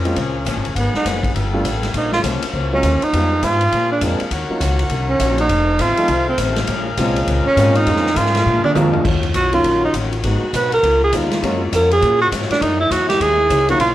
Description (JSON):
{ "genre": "jazz, big band swing", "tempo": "202 BPM", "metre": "4/4", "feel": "swing 62% on 8ths", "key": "Bb minor", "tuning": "A4 = 435 Hz", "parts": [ { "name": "picked steel-string acoustic guitar", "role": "accompaniment", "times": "0.0-13.9 s", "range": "F2 to Bb4", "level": "-27 LUFS", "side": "left 5 dB", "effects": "none" }, { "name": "warm grand piano", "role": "accompaniment", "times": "0.0-11.6, 13.7-13.8 s", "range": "Eb3 to Gb4", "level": "-22 LUFS", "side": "equal", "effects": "none" }, { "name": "clear saxophone section", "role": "sustained chords", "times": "0.0-13.9 s", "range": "Db3 to Gb5", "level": "-27 LUFS", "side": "left 2 dB", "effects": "none" }, { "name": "upright bass", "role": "bass", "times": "0.0-13.9 s", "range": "F1 to Bb2", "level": "-21 LUFS", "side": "equal", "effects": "transformer saturation" }, { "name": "swinging big-band drum kit", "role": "drums", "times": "0.1-13.9 s", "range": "crash cymbal, hi-hat, kick drum, ride cymbal, snare drum, toms", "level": "-24 LUFS", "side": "left 1 dB", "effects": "none" }, { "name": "breathy tenor saxophone", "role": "melody", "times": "0.8-13.9 s", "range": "Cb4 to Cb5", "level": "-16 LUFS", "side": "right 2 dB", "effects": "none" } ], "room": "moderate large studio reverb, RT60 0.9 s", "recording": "worn, warbling old tape, cassette tape, warbly pitch drift", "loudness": "-14 LUFS", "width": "side -14 dB against mid", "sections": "0.0-9.1 A section; 9.1-13.9 A section", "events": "tenor saxophone solo 0.0-13.9; drum fill 8.5-9.1", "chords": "0.0 Bbm7; 0.8 Abm7; 1.4 G9; 1.9 Gbmaj7; 3.1 Fm7b5; 3.7 Bb7; 4.3 Ebm7; 5.5 F7; 6.7 Bbm7; 8.5 Bb7; 9.1 Ebm9; 10.2 Abm7; 10.8 Db13; 11.4 Gbmaj7; 12.6 Gb13" }